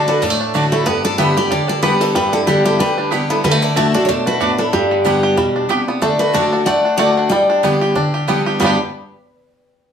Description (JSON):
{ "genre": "bluegrass", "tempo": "186 BPM", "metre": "4/4", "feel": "swing 56% on 8ths", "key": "G major", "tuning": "A4 = 442 Hz", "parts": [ { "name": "picked steel-string acoustic guitar", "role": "melody", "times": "0.0-8.8 s", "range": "G4 to G5", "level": "-19 LUFS", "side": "right 1 dB", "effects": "none" }, { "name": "lap resonator guitar", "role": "second line", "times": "0.0-8.8 s", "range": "D4 to D5", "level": "-20 LUFS", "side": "left 2 dB", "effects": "none" }, { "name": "picked steel-string acoustic guitar", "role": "accompaniment", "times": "0.0-8.8 s", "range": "G2 to G4", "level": "-19 LUFS", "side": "left 1 dB", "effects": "none" }, { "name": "bluegrass banjo", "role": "arpeggios", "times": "0.0-8.8 s", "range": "D3 to G4", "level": "-20 LUFS", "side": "right 1 dB", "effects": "none" }, { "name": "mandolin", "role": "stabs", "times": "0.5-8.8 s", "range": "A3 to A5", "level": "-22 LUFS", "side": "right 4 dB", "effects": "none" } ], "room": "wet studio reverb, RT60 0.7 s", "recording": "heard from further back in the room", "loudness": "-13 LUFS", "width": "side -8 dB against mid", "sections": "0.0-6.0 A section; 6.0-8.6 B section; 8.6-9.9 C section", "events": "none", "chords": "0.0 D; 0.9 G; 3.4 D; 4.7 G; 6.0 D; 7.3 G", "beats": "0.22 0.55 | 0.87 1.19 1.51 1.83 | 2.15 2.47 2.80 3.12 | 3.44 3.76 4.08 4.41 | 4.73 5.05 5.37 5.70 | 6.02 6.34 6.67 6.99 | 7.31 7.64 7.96 8.28 | 8.61" }